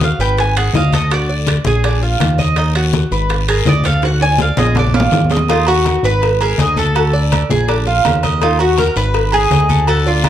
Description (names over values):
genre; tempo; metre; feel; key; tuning
latin, Cuban son and guajira; 164 BPM; 4/4; straight; unclear; A4 = 440 Hz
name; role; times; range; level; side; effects
Cuban tres; melody; 0.0-10.3 s; F4 to Ab5; -18 LUFS; equal; none
Cuban tres; arpeggios; 0.0-10.3 s; D4 to Eb5; -19 LUFS; right 4 dB; none
fat analog bass; bass; 0.0-10.3 s; Ab1 to Eb2; -16 LUFS; left 1 dB; none
bongos and cowbell; percussion; 0.0-10.3 s; none; -24 LUFS; left 6 dB; none
congas; percussion; 0.0-10.3 s; none; -21 LUFS; left 2 dB; none
guiro; percussion; 0.0-10.3 s; none; -27 LUFS; left 10 dB; none
timbales and agogo bells; percussion; 0.4-10.3 s; none; -23 LUFS; right 6 dB; none
room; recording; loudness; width
light reverb; dark, warm production; -12 LUFS; side -10 dB against mid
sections
0.0-5.5 A section; 5.5-10.3 B section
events
Cuban tres solo 0.0-5.5; drum fill 4.0-5.5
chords
0.4 Abm; 1.1 D; 1.8 Bb; 2.6 Ebm; 3.3 Abm; 4.0 D; 4.8 Bb; 5.5 Ebm; 6.2 Abm; 7.0 D; 7.7 Bb; 8.4 Ebm; 9.1 Abm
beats
0.01 0.38 0.74 | 1.11 1.47 1.84 2.20 | 2.57 2.93 3.30 3.66 | 4.03 4.39 4.76 5.13 | 5.49 5.86 6.22 6.59 | 6.95 7.32 7.68 8.05 | 8.41 8.78 9.15 9.51 | 9.88 10.24